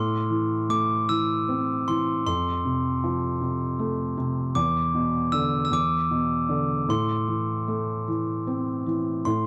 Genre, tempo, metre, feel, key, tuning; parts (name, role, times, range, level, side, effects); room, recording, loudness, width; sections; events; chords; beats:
children's music, lullaby; 52 BPM (dotted quarters); 6/8; rubato; A minor; A4 = 440 Hz
glockenspiel with brass mallets; melody; 0.0-9.5 s; C6 to E6; -29 LUFS; equal
felt-muted upright piano; accompaniment; 0.0-9.5 s; E2 to C4; -28 LUFS; equal
light reverb; dark, warm production; -25 LUFS; mono
0.0-9.3 A section
0.0 Am; 2.3 F; 4.6 E5; 6.9 Am
1.10 | 2.27 3.42 | 4.57 5.72 | 6.89 8.08 | 9.25